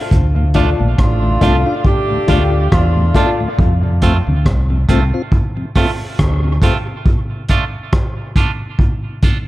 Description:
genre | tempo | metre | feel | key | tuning
dub reggae | 69 BPM | 4/4 | swing 56% on 16ths | D minor | A4 = 440 Hz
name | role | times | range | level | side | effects
fingered electric bass | bass | 0.1-6.6 s | A1 to F2 | -14 LUFS | equal | none
crunchy breakbeat drum kit | drums | 0.1-9.5 s | hi-hat, kick drum, rim click | -16 LUFS | equal | none
mellow tonewheel organ | accompaniment | 0.4-7.0 s | D2 to F4 | -22 LUFS | left 2 dB | slow rotary speaker, high-pass filter
mellow horn section | second line | 0.5-3.4 s | F3 to G4 | -21 LUFS | right 1 dB | dub echo
clean electric guitar | accompaniment | 0.5-9.4 s | A3 to F4 | -23 LUFS | right 5 dB | high-pass filter, dub echo
dark upright piano | stabs | 0.5-3.4 s | F4 to F5 | -23 LUFS | left 6 dB | dub echo
room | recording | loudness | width
light reverb, small room ambience | dark, warm production | -12 LUFS | side -16 dB against mid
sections
0.0-9.5 A section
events
filter sweep 3.6-9.5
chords
0.1 Dm; 3.6 F; 7.1 Dm

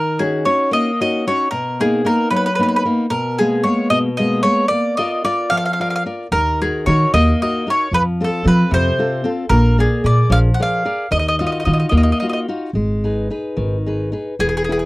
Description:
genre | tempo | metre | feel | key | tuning
italian folk, Italian serenade | 75 BPM (dotted quarters) | 6/8 | rubato | Eb minor | A4 = 441 Hz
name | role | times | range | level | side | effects
mandolin | melody | 0.0-14.9 s | Ab4 to Gb5 | -18 LUFS | equal | none
nylon-string guitar | accompaniment | 0.0-14.9 s | B2 to D5 | -20 LUFS | left 1 dB | none
upright bass | bass | 6.3-14.9 s | E1 to F3 | -16 LUFS | equal | none
room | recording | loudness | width
little or no reverb | dry, close 1970s-style studio recording | -15 LUFS | side -20 dB against mid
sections
0.0-12.7 A section; 12.7-14.9 B section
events
none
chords
0.0 Ebm7; 1.5 Bmaj7; 3.1 Abmadd9/Cb; 4.7 Bb; 6.3 Ebm; 7.9 F; 9.5 Bb7; 11.1 Ebmadd9; 12.7 G#m

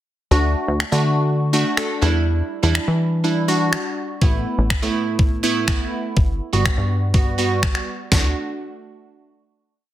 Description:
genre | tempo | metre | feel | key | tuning
dance-pop | 123 BPM | 4/4 | straight | D major | A4 = 440 Hz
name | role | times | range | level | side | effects
glassy wavetable pluck | accompaniment | 0.3-8.3 s | G3 to A4 | -22 LUFS | right 2 dB | chorus, sidechain pumping
plucky analog bass | bass | 0.3-8.3 s | G1 to E3 | -20 LUFS | equal | sidechain pumping
detuned 8-bit digital drum machine | drums | 0.8-8.2 s | finger snaps, hi-hat, kick drum, snare drum | -19 LUFS | equal | soft clipping on snare
room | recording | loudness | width
light reverb | dense, heavily limited modern master | -17 LUFS | side -13 dB against mid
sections
0.3-8.1 verse; 8.1-9.9 final chord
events
none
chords
0.3 D; 2.0 Em7; 4.2 Asus2; 6.2 Gmaj7; 8.1 D

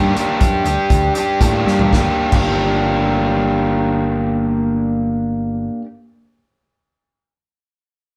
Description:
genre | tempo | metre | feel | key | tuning
indie rock | 113-126 BPM | 4/4 | straight | G minor | A4 = 439 Hz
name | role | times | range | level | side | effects
overdriven electric guitar | riff | 0.0-5.9 s | Bb3 to G4 | -19 LUFS | equal | none
growling picked electric bass | bass | 0.0-5.7 s | G1 to A2 | -24 LUFS | equal | overdrive
loose indie drum kit | drums | 0.2-2.5 s | crash cymbal, hi-hat, kick drum, snare drum, toms | -21 LUFS | equal | none
room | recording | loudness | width
moderate studio reverb, RT60 0.8 s | band playing live in one room | -17 LUFS | mono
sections
0.0-1.9 A section; 1.9-6.2 B section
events
slowing down 0.0-1.9; drum fill 1.7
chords
0.0 Gm

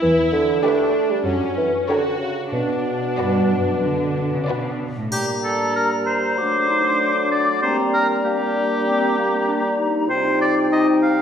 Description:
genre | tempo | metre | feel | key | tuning
cinematic, playful, whimsical film cue | 96 BPM | 4/4 | straight | B minor, G minor from 5.1 s | A4 = 439 Hz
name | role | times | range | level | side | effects
mellow bassoon | accompaniment | 0.0-11.2 s | B2 to A3 | -22 LUFS | right 1 dB | none
rich studio viola section | accompaniment | 0.0-4.8 s | C#4 to F#4 | -25 LUFS | right 1 dB | none
clear studio cello section | bass | 0.0-5.1 s | E2 to D3 | -25 LUFS | right 1 dB | none
rich chamber violin section | melody | 0.6-5.0 s | C#5 to D5 | -35 LUFS | left 2 dB | none
rich chamber violin section | second line | 0.6-5.0 s | F#4 to B4 | -31 LUFS | left 1 dB | none
clear oboe | second line | 5.1-11.2 s | G4 to F5 | -21 LUFS | equal | none
hollow concert flute | second line | 5.1-11.2 s | G5 to D6 | -25 LUFS | equal | none
dark French horn section | sustained chords | 5.1-11.2 s | G3 to Eb4 | -23 LUFS | left 2 dB | none
triangle | percussion | 5.1-6.3 s | none | -31 LUFS | left 3 dB | none
warm clarinet | second line | 6.4-11.2 s | Bb3 to F4 | -26 LUFS | left 2 dB | none
room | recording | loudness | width
wet recital hall reverb, RT60 1.7 s | recorded in a church or concert hall | -17 LUFS | side -8 dB against mid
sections
0.0-5.1 A section; 5.1-11.2 B section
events
none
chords
0.0 Em7; 1.3 F#; 2.5 Bm; 5.1 Gm; 6.4 D7/F#; 7.6 Gm; 10.1 Cm

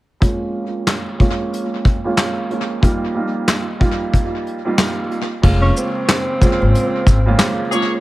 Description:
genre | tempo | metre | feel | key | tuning
hip hop, boom-bap hip-hop | 92 BPM | 4/4 | swing 62% on 16ths | unclear | A4 = 440 Hz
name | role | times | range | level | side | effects
dark upright piano | accompaniment | 0.2-8.0 s | F2 to F4 | -21 LUFS | right 2 dB | cassette tape, high-pass filter, low-pass filter, tape echo
vintage brush drum kit | drums | 0.2-7.9 s | crash cymbal, handclaps, hi-hat, kick drum, shaker, snare drum | -17 LUFS | equal | tape echo
upright bass | bass | 5.4-7.3 s | F1 to Ab1 | -15 LUFS | equal | none
breathy tenor saxophone | melody | 5.6-7.6 s | C4 to Db4 | -21 LUFS | equal | high-pass filter, low-pass filter, tape echo
clear horn section | stabs | 7.7-7.9 s | Bb3 to Db5 | -19 LUFS | left 2 dB | high-pass filter, low-pass filter, tape echo
room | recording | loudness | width
light reverb, studio ambience | echo-heavy mix | -15 LUFS | side -17 dB against mid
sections
0.2-5.4 A section; 5.4-8.0 B section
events
filter sweep on upright piano 0.2-5.4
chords
0.2 Bbm7/F; 2.8 Ebadd9/F; 5.4 Bbm7/F

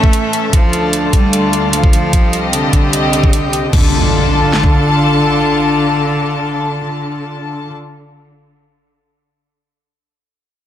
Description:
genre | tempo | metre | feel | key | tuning
heavy wobble dubstep | 150 BPM | 4/4 | half-time | D phrygian | A4 = 439 Hz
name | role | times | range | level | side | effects
rich cello | melody | 0.0-7.7 s | D3 to A3 | -17 LUFS | left 1 dB | tape echo
rich studio string section | sustained chords | 0.0-7.7 s | C2 to A5 | -18 LUFS | left 1 dB | sidechain pumping
dubstep drum kit | drums | 0.0-4.7 s | kick drum, snare drum | -11 LUFS | equal | none
airy breathy pad | texture | 0.0-7.7 s | C4 to A5 | -19 LUFS | equal | chorus, sidechain pumping
dubstep drum kit | drums | 0.1-3.8 s | crash cymbal, hi-hat | -20 LUFS | right 2 dB | none
impact | sound effects | 3.7-8.4 s | none | -19 LUFS | equal | none
room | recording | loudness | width
light reverb, digital ambience | none | -11 LUFS | side -11 dB against mid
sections
0.0-3.7 A section; 3.7-6.9 B section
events
none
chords
0.0 A; 0.5 Dm; 2.1 Cm; 3.7 Dm

